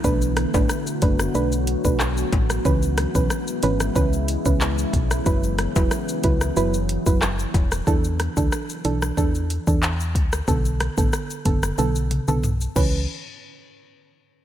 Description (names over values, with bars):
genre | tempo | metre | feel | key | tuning
dancehall | 92 BPM | 4/4 | straight | unclear | A4 = 440 Hz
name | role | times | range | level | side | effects
soft round pluck | accompaniment | 0.0-13.0 s | D3 to B4 | -25 LUFS | right 4 dB | chorus
deep dark ambient pad | sustained chords | 0.0-7.8 s | C#3 to F#4 | -28 LUFS | left 2 dB | chorus, built-in reverb, sidechain pumping
solid FM bass | bass | 0.0-13.1 s | E1 to E2 | -24 LUFS | left 1 dB | none
afro-pop drum kit | drums | 0.0-12.9 s | crash cymbal, handclaps, hi-hat, kick drum, rim click, shaker, toms | -23 LUFS | left 1 dB | none
egg shaker and timbales | percussion | 0.0-13.1 s | none | -35 LUFS | left 10 dB | none
room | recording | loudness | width
light reverb | none | -19 LUFS | side -11 dB against mid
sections
0.0-7.9 A section; 7.9-13.1 B section; 13.1-14.4 C section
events
drum fill 11.8-13.1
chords
0.0 Bm7; 2.7 C#m7; 5.3 F#7sus4; 7.9 E7sus4; 10.5 Bm7; 12.8 C#m7; 13.1 N.C.